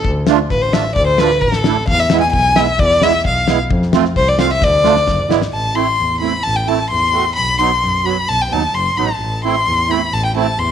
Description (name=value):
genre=klezmer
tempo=131 BPM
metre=2/4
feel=straight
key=A dorian sharp4 from 5.5 s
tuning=A4 = 440 Hz
part: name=clear violin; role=melody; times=0.0-10.7 s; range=A4 to C6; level=-15 LUFS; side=left 2 dB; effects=none
part: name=warm double bass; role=bass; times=0.0-10.7 s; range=F#1 to F#2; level=-20 LUFS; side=left 1 dB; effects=none
part: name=damped 70s drum kit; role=drums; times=0.0-5.5 s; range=kick drum, snare drum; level=-19 LUFS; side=left 3 dB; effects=none
part: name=musette accordion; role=accompaniment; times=0.3-10.5 s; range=F#3 to F#4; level=-19 LUFS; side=right 12 dB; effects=none
room=moderate echo chamber reverb, RT60 1.3 s, studio ambience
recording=1960s-style stereo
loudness=-12 LUFS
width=side -9 dB against mid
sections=0.0-5.5 A section; 5.5-10.7 B section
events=drum fill 4.6-5.5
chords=0.0 Dm; 1.9 E; 3.7 F; 4.6 Dm; 5.1 E7; 5.5 Am; 7.4 B; 9.2 Am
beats=| 0.05 0.51 | 0.96 1.42 | 1.88 2.33 | 2.79 3.25 | 3.70 4.16 | 4.62 5.08 | 5.53 5.99 | 6.45 6.91 | 7.37 7.83 | 8.29 8.75 | 9.21 9.67 | 10.12 10.58